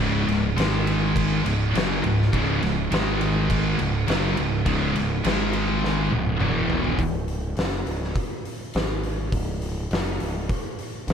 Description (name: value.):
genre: stoner and doom metal.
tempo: 103 BPM.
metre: 4/4.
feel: straight.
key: C# minor.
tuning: A4 = 440 Hz.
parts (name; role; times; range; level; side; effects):
scooped high-gain guitar; riff; 0.0-7.0 s; C#2 to G#3; -28 LUFS; equal; distortion.
thick fuzz guitar; riff; 0.0-7.0 s; C#2 to G#3; -26 LUFS; left 7 dB; distortion.
thick fuzz guitar; riff; 0.0-7.0 s; C#2 to G#3; -27 LUFS; right 10 dB; distortion.
growling picked electric bass; bass; 0.0-11.1 s; C#1 to G#1; -28 LUFS; equal; overdrive.
oversized low-tuned drum kit; drums; 0.3-11.1 s; crash cymbal, hi-hat, kick drum, snare drum, toms; -26 LUFS; equal; none.
room: light reverb.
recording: none.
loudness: -21 LUFS.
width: side -7 dB against mid.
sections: 0.0-7.0 A section; 7.0-11.1 B section.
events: drum fill 5.8-7.0.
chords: 0.0 C#5; 0.6 G#5; 1.4 C#5; 2.9 G#5; 3.8 C#5; 5.2 G#5; 6.1 C#5; 6.4 E5; 7.0 C#sus4; 8.7 N.C.; 9.3 C#sus4.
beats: 0.56 1.15 1.73 | 2.32 2.90 3.49 4.07 | 4.65 5.24 5.82 6.40 | 6.99 7.57 8.16 8.74 | 9.33 9.91 10.50 11.08.